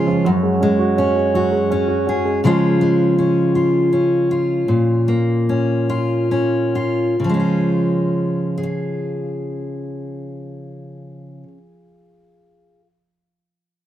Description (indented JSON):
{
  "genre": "folk",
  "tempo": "44-55 BPM (dotted quarters)",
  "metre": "6/8",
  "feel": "straight",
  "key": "Db major",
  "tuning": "A4 = 438 Hz",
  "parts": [
    { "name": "fingerpicked steel-string acoustic guitar", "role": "accompaniment", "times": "0.0-12.9 s", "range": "Gb2 to F5", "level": "-17 LUFS", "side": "left 1 dB", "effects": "none" },
    { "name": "dark upright piano", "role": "arpeggios", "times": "0.0-2.4 s", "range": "F3 to Gb4", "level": "-18 LUFS", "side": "right 4 dB", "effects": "digital delay" }
  ],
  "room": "light reverb, studio ambience",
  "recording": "none",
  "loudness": "-15 LUFS",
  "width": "side -12 dB against mid",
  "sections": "0.0-7.2 A section; 7.2-12.7 B section",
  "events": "slowing down 2.4-7.2",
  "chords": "0.2 Gbsus2; 2.4 Db; 4.7 Bbm; 7.2 Db",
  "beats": "| 0.25 1.34 | 2.43 3.53 | 4.68 5.89 | 7.20 8.57 | 9.94 11.31"
}